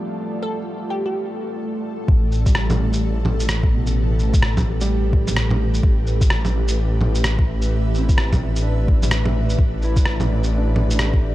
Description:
future garage; 128 BPM; 4/4; swing 62% on 16ths; A minor; A4 = 440 Hz
felt-muted upright piano; accompaniment; 0.0-11.3 s; B2 to A4; -31 LUFS; right 2 dB; sidechain pumping, tape echo
ethereal airy pad; sustained chords; 0.0-11.3 s; A3 to E5; -28 LUFS; equal; ensemble chorus, built-in reverb, sidechain pumping
flickering grainy texture; texture; 0.0-2.1 s; A5; -46 LUFS; equal
glassy wavetable pluck; melody; 0.4-1.7 s; G4 to A4; -30 LUFS; equal; chorus, tape echo
swelling detuned saw bass; bass; 2.1-11.3 s; A1; -20 LUFS; equal; sidechain pumping
electronic kick drum; drums; 2.1-11.2 s; -17 LUFS; equal; overdrive
electronic shaker, rim click and bongos; drums; 2.3-11.1 s; -24 LUFS; right 1 dB
digital ambience; -17 LUFS; side -16 dB against mid
0.0-2.1 A section; 2.1-11.3 B section
0.0 Dm7; 2.1 Asus2; 5.8 Cmaj9/A; 9.6 E7sus4/A
| 0.21 0.68 1.14 1.61 | 2.08 2.55 3.02 3.49 | 3.96 4.42 4.89 5.36 | 5.83 6.30 6.77 7.24 | 7.71 8.18 8.64 9.11 | 9.58 10.05 10.52 10.99

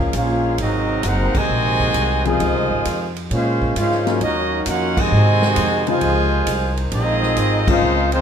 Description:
jazz, big band swing; 133 BPM; 4/4; swing 68% on 8ths; Db major; A4 = 439 Hz
warm trumpet section; melody; 0.0-8.2 s; Ab3 to Ab5; -21 LUFS; equal
warm trombone section; second line; 0.0-8.2 s; C3 to Gb4; -23 LUFS; right 2 dB
warm saxophone section; sustained chords; 0.0-8.2 s; C3 to C5; -29 LUFS; right 1 dB
upright bass; bass; 0.0-8.2 s; Gb1 to Bb2; -21 LUFS; equal
swinging big-band drum kit; drums; 0.1-8.2 s; crash cymbal, hi-hat, kick drum, ride cymbal, snare drum; -26 LUFS; right 1 dB
warm upright piano; accompaniment; 2.2-8.2 s; Db3 to Ab4; -23 LUFS; left 7 dB
light reverb; minimal, uncompressed stereo recording; -16 LUFS; side -8 dB against mid
0.0-8.2 A section
band accent 1.3, 4.9, 7.6
0.0 Gbmaj9 (rootless); 0.6 Ab9; 2.4 Dbmaj9; 3.3 Bbm9; 4.2 Ebm9; 5.1 Ab13; 6.0 Dbmaj9
0.14 | 0.59 1.04 1.49 1.95 | 2.40 2.85 3.30 3.75 | 4.21 4.66 5.11 5.56 | 6.01 6.46 6.92 7.37 | 7.82

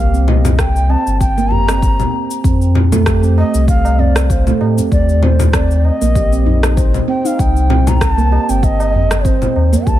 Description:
organic downtempo; 97 BPM; 4/4; swing 55% on 16ths; C dorian; A4 = 441 Hz
mellow bass bansuri; melody; 0.0-10.0 s; C5 to Bb5; -20 LUFS; equal; digital delay
handpan; arpeggios; 0.0-10.0 s; A3 to C5; -19 LUFS; right 5 dB; digital delay
warm sub bass; bass; 0.0-10.0 s; G1 to A2; -14 LUFS; left 1 dB; sidechain pumping
electronic cabasa, congas and rim click; drums; 0.1-10.0 s; -20 LUFS; left 3 dB; overdrive
tabla; percussion; 0.3-9.8 s; -25 LUFS; right 1 dB
electronic kick drum; drums; 0.6-10.0 s; -16 LUFS; left 1 dB; overdrive
light reverb, studio reverb; -11 LUFS; side -13 dB against mid
0.0-10.0 A section
0.0 C5; 2.4 F; 4.9 Eb5; 7.4 Cm
0.59 1.21 1.82 | 2.44 3.06 3.68 4.30 | 4.92 5.54 6.16 6.77 | 7.39 8.01 8.63 9.25 | 9.87

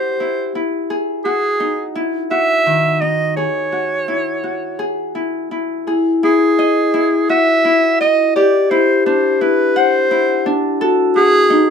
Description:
contemporary instrumental, chamber music in an uneven meter; 170 BPM (eighths); 7/8; straight; A4 = 440 Hz
clear clarinet; melody; 0.0-11.7 s; G#4 to E5; -15 LUFS; right 2 dB
Celtic harp; arpeggios; 0.0-11.7 s; D#3 to F#5; -19 LUFS; left 1 dB
vibraphone with soft mallets; second line; 5.9-11.7 s; E4 to G4; -16 LUFS; left 4 dB
little or no reverb; close, detailed microphones; -13 LUFS; side -6 dB against mid
0.0-5.9 A section; 5.9-11.7 A section
0.0 C; 0.9 D#madd11; 5.9 Emaj9; 8.4 C; 10.8 F#m13
0.20 0.55 | 0.90 1.25 1.60 1.95 2.31 2.66 3.02 | 3.37 3.72 4.08 4.43 4.79 5.15 5.51 | 5.87 6.23 6.58 6.94 7.29 7.65 8.00 | 8.36 8.71 9.06 9.41 9.76 10.11 10.46 | 10.81 11.16 11.51

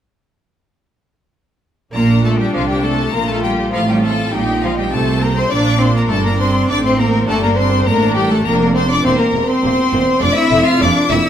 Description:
classical, baroque-style concerto movement with solo episodes; 101 BPM; 3/4; straight; Bb major; A4 = 436 Hz
rich cello; melody; 1.9-11.3 s; F3 to F4; -19 LUFS; left 1 dB
rich chamber violin section; melody; 1.9-11.3 s; F5 to F6; -22 LUFS; left 4 dB
rich chamber violin section; second line; 1.9-11.2 s; F4 to F5; -20 LUFS; left 3 dB
lute; accompaniment; 1.9-11.3 s; E2 to G4; -24 LUFS; right 1 dB
rich chamber cello section; bass; 1.9-11.2 s; E2 to C3; -20 LUFS; right 2 dB
rich chamber double bass section; bass; 1.9-11.2 s; E1 to C2; -21 LUFS; right 4 dB
warm studio viola section; accompaniment; 2.0-11.2 s; A3 to F4; -24 LUFS; equal
wet recital hall reverb, RT60 1.5 s; -13 LUFS; side -9 dB against mid
1.9-11.3 A section
1.9 Bb; 3.7 F7/A; 5.5 Bb; 7.3 Gm; 9.1 C7/E; 10.2 F
| 1.95 2.54 3.14 | 3.73 4.32 4.92 | 5.51 6.10 6.69 | 7.28 7.88 8.46 | 9.05 9.64 10.23 | 10.82

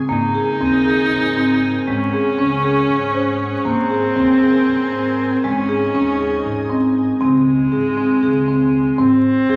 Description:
contemporary instrumental, chamber music in an uneven meter; 236 BPM (eighths); 7/8; straight; Ab mixolydian; A4 = 441 Hz
soft additive organ-like pad; sustained chords; 0.0-7.2 s; C4 to Ab5; -31 LUFS; equal; ensemble chorus, built-in reverb
rich viola; second line; 0.1-9.6 s; Ab3 to Eb4; -24 LUFS; equal
marimba with medium mallets; arpeggios; 0.1-9.6 s; Ab3 to C5; -18 LUFS; equal
upright bass; bass; 0.1-9.6 s; Ab1 to Ab2; -30 LUFS; equal
wet recital hall reverb, RT60 1.7 s; vinyl crackle; -17 LUFS; mono
0.0-7.2 A section; 7.2-9.6 B section
0.1 Abadd9; 1.9 Gbsus2; 3.7 Abadd9; 5.4 Absus4; 7.2 Db5; 9.0 Ab
| 0.10 0.35 0.61 0.86 1.12 1.37 1.63 | 1.88 2.13 2.39 2.64 2.90 3.15 3.41 | 3.66 3.92 4.17 4.42 4.68 4.93 5.19 | 5.44 5.69 5.95 6.20 6.45 6.71 6.96 | 7.21 7.47 7.72 7.97 8.23 8.48 8.73 | 8.99 9.24 9.49

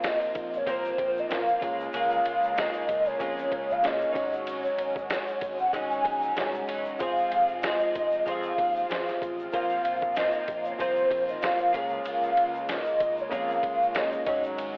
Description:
indie pop, bedroom pop; 95 BPM; 4/4; swing 55% on 16ths; Db major; A4 = 439 Hz
hollow clarinet-like synth lead; melody; 0.0-14.5 s; C5 to Ab5; -26 LUFS; equal; ensemble chorus
reed electric piano; accompaniment; 0.0-14.8 s; Ab3 to Db5; -34 LUFS; equal
twelve-string electric guitar; accompaniment; 0.0-14.8 s; Ab2 to Ab4; -35 LUFS; equal; analog chorus, warbly pitch drift
phased analog pad; sustained chords; 0.0-14.8 s; C3 to Gb4; -39 LUFS; equal; phaser, chorus
fretless electric bass; bass; 0.0-14.8 s; Fb1 to F2; -44 LUFS; equal; transformer saturation
lo-fi sampler-style drum kit; drums; 0.0-14.7 s; hi-hat, kick drum, ride cymbal, snare drum; -35 LUFS; equal
tube shaker; percussion; 0.0-14.7 s; -56 LUFS; equal
light reverb; dry, gritty hardware recording, cassette tape, telephone sound; -24 LUFS; side -37 dB against mid
0.0-14.8 A section
0.0 Bbsus2; 1.6 Db6; 4.2 Ab7sus4; 7.0 Fm; 9.5 Bbsus2; 11.7 Db6
0.03 0.67 1.30 | 1.94 2.57 3.20 3.83 | 4.47 5.10 5.73 6.37 | 7.00 7.63 8.27 8.90 | 9.53 10.16 10.79 11.43 | 12.06 12.69 13.32 13.96 | 14.59

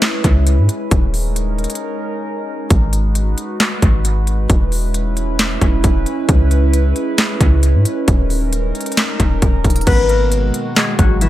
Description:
hip hop, trap; 134 BPM; 4/4; half-time; G# minor; A4 = 437 Hz
warbly tape-like pad; sustained chords; 0.0-11.3 s; B2 to B4; -22 LUFS; right 1 dB; chorus, built-in reverb, phaser
trap drum kit; drums; 0.0-11.3 s; crash cymbal, handclaps, hi-hat, kick drum, snare drum; -15 LUFS; equal; analog delay
clean 808-style bass; bass; 0.2-11.3 s; D#1 to G#2; -15 LUFS; equal
concert harp; melody; 9.9-11.3 s; E3 to B4; -17 LUFS; left 4 dB; analog delay
digital ambience; echo-heavy mix; -13 LUFS; side -14 dB against mid
0.0-9.9 A section; 9.9-11.3 B section
break 1.8-2.7
0.0 C#m7; 0.9 D#7sus4; 2.7 G#m7; 4.5 E6; 6.3 C#m7; 8.1 D#7sus4; 9.9 G#m7
0.02 0.47 | 0.91 1.36 1.81 2.26 | 2.71 3.15 3.60 4.05 | 4.50 4.94 5.39 5.84 | 6.29 6.73 7.18 7.63 | 8.08 8.53 8.97 9.42 | 9.87 10.32 10.76 11.21

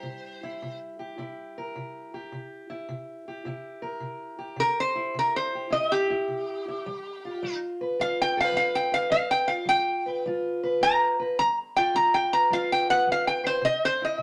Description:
acoustic country blues, solo or duo; 106 BPM; 4/4; swing 67% on 8ths; C major; A4 = 442 Hz
lap resonator guitar; melody; 0.0-0.8, 4.6-14.2 s; G4 to Bb5; -26 LUFS; equal
fingerpicked steel-string acoustic guitar; accompaniment; 0.0-14.2 s; C3 to B4; -34 LUFS; equal
moderate studio reverb, RT60 0.5 s; -25 LUFS; mono
0.0-14.2 A section
resonator guitar played with a steel bar solo 0.0-14.2
0.0 C7; 6.9 G7; 13.6 C
| 0.06 0.62 1.19 1.76 | 2.32 2.89 3.46 4.02 | 4.59 5.16 5.72 6.29 | 6.86 7.42 7.99 8.55 | 9.12 9.69 10.25 10.82 | 11.38 11.95 12.51 13.08 | 13.64 14.21

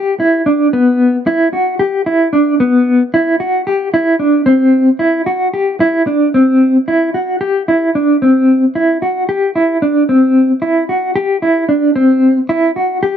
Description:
progressive instrumental, progressive; 224 BPM (eighths); 7/8; straight; A4 = 441 Hz
mellow electric guitar; solo; 0.0-13.2 s; B3 to G4; -10 LUFS; equal; tremolo
little or no reverb; dry, close 1970s-style studio recording; -10 LUFS; side -9 dB against mid
0.0-6.3 A section; 6.3-13.2 B section
0.20 0.46 | 0.73 1.00 1.26 1.53 1.80 2.06 2.33 | 2.60 2.87 3.13 3.40 3.67 3.93 4.20 | 4.47 4.74 5.00 5.27 5.54 5.80 6.07 | 6.34 6.61 6.87 7.14 7.41 7.68 7.94 | 8.21 8.48 8.75 9.01 9.28 9.55 9.82 | 10.08 10.35 10.62 10.89 11.15 11.42 11.69 | 11.96 12.22 12.49 12.76 13.03

